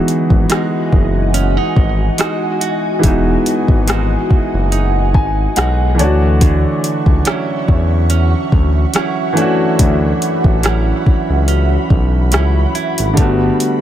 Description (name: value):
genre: contemporary R&B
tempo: 71 BPM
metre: 4/4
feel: swing 54% on 16ths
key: unclear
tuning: A4 = 442 Hz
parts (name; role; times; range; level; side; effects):
- warm baby grand piano; accompaniment; 0.0-13.8 s; D3 to G#5; -18 LUFS; left 1 dB; none
- ethereal airy pad; sustained chords; 0.0-13.8 s; G3 to C#6; -22 LUFS; right 1 dB; ensemble chorus, built-in reverb, sidechain pumping
- direct-recorded clean electric guitar; arpeggios; 0.0-13.8 s; D3 to F#4; -22 LUFS; right 8 dB; ping-pong delay
- smooth R&B drum kit; drums; 0.1-13.8 s; hi-hat, kick drum, rim click; -14 LUFS; equal; none
- smooth synth bass; bass; 0.3-13.5 s; E1 to E2; -15 LUFS; equal; none
room: little or no reverb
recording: none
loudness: -12 LUFS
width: side -11 dB against mid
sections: 0.0-13.8 A section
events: grand piano fill 4.7-6.4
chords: 0.0 Emaj9; 6.0 Dmaj9; 13.2 Gmaj9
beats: 0.50 1.34 2.19 | 3.03 3.88 4.72 5.57 | 6.41 7.26 8.11 8.95 | 9.79 10.64 11.48 12.33 | 13.18